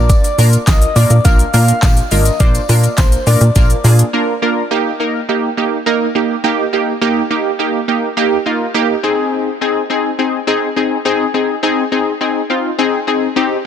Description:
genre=dance-pop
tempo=104 BPM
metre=4/4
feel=straight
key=Eb major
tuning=A4 = 441 Hz
part: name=soft struck synth lead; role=melody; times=0.0-4.4 s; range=C5 to F5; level=-20 LUFS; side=left 2 dB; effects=chorus, tape echo
part: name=funky polysynth comp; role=accompaniment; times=0.0-13.6 s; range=Bb3 to C5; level=-14 LUFS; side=equal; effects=chorus, sidechain pumping
part: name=plucky analog bass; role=bass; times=0.0-4.0 s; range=Ab1 to Bb2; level=-11 LUFS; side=equal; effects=sidechain pumping
part: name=pop drum kit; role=drums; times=0.1-4.1 s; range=handclaps, hi-hat, kick drum, shaker, snare drum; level=-13 LUFS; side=equal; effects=none
part: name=tambourine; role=percussion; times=0.1-4.0 s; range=none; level=-31 LUFS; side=left 10 dB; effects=none
room=light reverb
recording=dense, heavily limited modern master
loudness=-12 LUFS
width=side -9 dB against mid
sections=0.0-4.7 A section; 4.7-13.7 B section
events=break 4.1-4.7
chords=0.0 Bb; 4.7 Eb; 9.0 Ab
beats=| 0.09 0.67 1.25 1.82 | 2.40 2.98 3.56 4.13 | 4.71 5.29 5.86 6.44 | 7.02 7.59 8.17 8.75 | 9.32 9.90 10.48 11.06 | 11.63 12.21 12.79 13.36

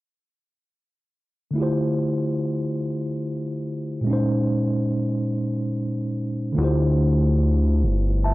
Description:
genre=R&B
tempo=48 BPM (dotted quarters)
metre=6/8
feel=straight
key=D minor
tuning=A4 = 440 Hz
part: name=mellow tine electric piano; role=accompaniment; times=1.5-8.3 s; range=Bb2 to A5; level=-22 LUFS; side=equal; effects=medium stereo tremolo
part: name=fat analog bass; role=bass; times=6.6-8.3 s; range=G1 to D2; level=-19 LUFS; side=equal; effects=transformer saturation
room=light reverb, digital ambience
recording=dry, gritty hardware recording, transformer saturation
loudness=-21 LUFS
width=side -19 dB against mid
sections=1.6-6.6 A section; 6.6-8.3 B section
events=none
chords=1.6 Dm11; 4.1 Bbm11; 6.6 Dm11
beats=| 1.56 2.81 | 4.07 5.32 | 6.57 7.82

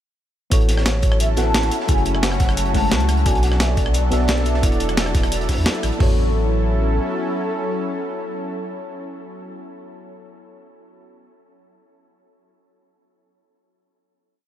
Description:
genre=liquid drum and bass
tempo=175 BPM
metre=4/4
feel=straight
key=A major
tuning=A4 = 440 Hz
part: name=mellow FM electric piano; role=accompaniment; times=0.5-11.3 s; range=G#3 to F#5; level=-27 LUFS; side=left 2 dB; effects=chorus, phaser, tape echo
part: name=lush unison pad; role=sustained chords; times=1.0-9.5 s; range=F#3 to A4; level=-27 LUFS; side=equal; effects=chorus, sidechain pumping
part: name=warm sub bass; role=bass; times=0.5-7.0 s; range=E1 to E2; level=-20 LUFS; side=equal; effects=none
part: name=breakbeat sampler-style drum kit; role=drums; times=0.5-6.1 s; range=hi-hat, kick drum, toms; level=-19 LUFS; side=equal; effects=none
part: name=breakbeat sampler-style drum kit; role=drums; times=0.5-5.9 s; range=hi-hat, rim click, snare drum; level=-25 LUFS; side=equal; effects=none
part: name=crunchy breakbeat drum kit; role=drums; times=0.5-6.0 s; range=hi-hat, snare drum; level=-31 LUFS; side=equal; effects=high-pass filter on hats, high-pass filter on snare, high-pass filter on room
part: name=hollow clarinet-like synth lead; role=melody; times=0.9-9.5 s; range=A4 to A5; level=-28 LUFS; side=equal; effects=ensemble chorus, analog delay
room=light reverb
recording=none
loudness=-17 LUFS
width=side -11 dB against mid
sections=0.5-6.0 drop; 6.0-8.7 final chord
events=drop 0.5-6.0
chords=0.5 A6; 1.7 F#m9; 3.3 Bm7; 4.6 E9sus4; 6.0 A6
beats=| 0.52 0.86 1.20 1.55 | 1.89 2.23 2.57 2.92 | 3.26 3.60 3.95 4.29 | 4.63 4.97 5.32 5.66 | 6.00 6.35 6.69 7.03 | 7.37 7.72 8.06 8.40

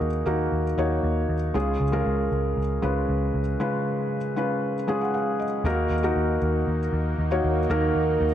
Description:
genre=piano-driven pop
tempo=117 BPM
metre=4/4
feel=straight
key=unclear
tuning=A4 = 440 Hz
part: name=felt-muted upright piano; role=accompaniment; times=0.0-8.3 s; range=C#3 to G#5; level=-24 LUFS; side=equal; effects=none
part: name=vintage muted picked electric bass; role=bass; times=0.0-8.3 s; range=C#2 to D#2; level=-26 LUFS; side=equal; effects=none
part: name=lush unison pad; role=sustained chords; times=5.6-8.3 s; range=A#3 to F#4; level=-31 LUFS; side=right 2 dB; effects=chorus
room=moderate plate reverb, RT60 3.1 s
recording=dark, warm production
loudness=-22 LUFS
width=side -10 dB against mid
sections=0.0-5.7 A section; 5.7-8.3 B section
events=felt piano fill 4.6-5.7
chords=0.0 D#m; 1.5 C#; 5.7 D#m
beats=0.01 0.52 1.03 | 1.55 2.06 2.57 3.09 | 3.60 4.11 4.63 5.14 | 5.65 6.16 6.67 7.18 | 7.70 8.21

